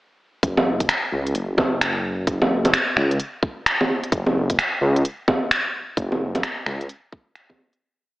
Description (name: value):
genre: future garage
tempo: 130 BPM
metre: 4/4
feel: swing 62% on 16ths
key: unclear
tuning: A4 = 440 Hz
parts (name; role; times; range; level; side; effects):
- dark detuned saw bass; bass; 0.4-6.9 s; F#1 to C#2; -23 LUFS; equal; sidechain pumping
- electronic kick drum; drums; 0.4-7.6 s; none; -24 LUFS; equal; none
- organic electronic drum kit; drums; 0.4-7.8 s; bongos, finger snaps, hi-hat; -20 LUFS; equal; none
room: moderate lush hall reverb, RT60 1.7 s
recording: AM radio sound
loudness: -19 LUFS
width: side -18 dB against mid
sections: 0.4-7.8 chorus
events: fade-out 5.4-7.8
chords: none